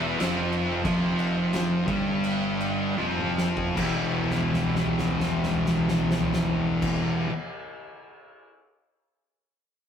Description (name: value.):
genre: stoner and doom metal.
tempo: 74-94 BPM.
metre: 4/4.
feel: straight.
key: unclear.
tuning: A4 = 441 Hz.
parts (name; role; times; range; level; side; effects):
thick fuzz guitar; riff; 0.0-7.3 s; E2 to G3; -28 LUFS; left 3 dB; distortion.
thick fuzz guitar; riff; 0.0-7.3 s; E2 to G3; -29 LUFS; right 4 dB; distortion.
tight distorted guitar; riff; 0.0-7.3 s; E2 to G4; -32 LUFS; equal; distortion.
fuzz fingered electric bass; bass; 0.0-6.9 s; E1 to G1; -34 LUFS; equal; overdrive.
oversized low-tuned drum kit; drums; 0.2-8.5 s; crash cymbal, kick drum, snare drum, toms; -31 LUFS; equal; none.
room: moderate studio reverb, RT60 0.6 s.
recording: rough rehearsal-room recording.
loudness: -23 LUFS.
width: side -8 dB against mid.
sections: 0.0-3.8 A section; 3.8-7.0 B section.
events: slowing down 0.0-3.8; drum fill 3.0-3.8, 4.2-6.8.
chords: 0.0 Em.